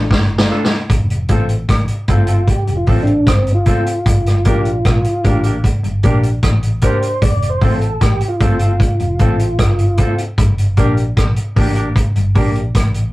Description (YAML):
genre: roots reggae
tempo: 76 BPM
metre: 4/4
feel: straight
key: F major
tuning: A4 = 438 Hz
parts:
  - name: warm upright piano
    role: stabs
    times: 0.0-12.6 s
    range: C4 to Bb4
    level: -23 LUFS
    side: left 2 dB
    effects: none
  - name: vintage muted fingered electric bass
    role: bass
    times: 0.0-13.1 s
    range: F1 to Bb1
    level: -18 LUFS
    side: equal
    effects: none
  - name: mellow electric guitar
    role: riff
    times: 0.1-13.0 s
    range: F2 to Bb2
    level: -24 LUFS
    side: left 1 dB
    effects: none
  - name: vintage drum kit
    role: drums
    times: 0.1-13.1 s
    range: hi-hat, kick drum, rim click, snare drum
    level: -15 LUFS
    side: equal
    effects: none
  - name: clean electric guitar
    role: accompaniment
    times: 0.5-12.5 s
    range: A3 to Bb4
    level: -23 LUFS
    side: right 1 dB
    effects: slapback echo
  - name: tonewheel organ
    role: melody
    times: 2.1-10.2 s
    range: C4 to D5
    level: -20 LUFS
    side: right 1 dB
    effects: slow rotary speaker, tube saturation
room: moderate booth ambience, RT60 0.2 s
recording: rough rehearsal-room recording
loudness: -12 LUFS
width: side -18 dB against mid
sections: 0.9-13.1 A section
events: drum fill 0.0-0.9; tonewheel organ solo 0.9-13.1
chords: 0.0 F6; 0.9 F; 4.1 Gm; 7.2 F; 10.4 Gm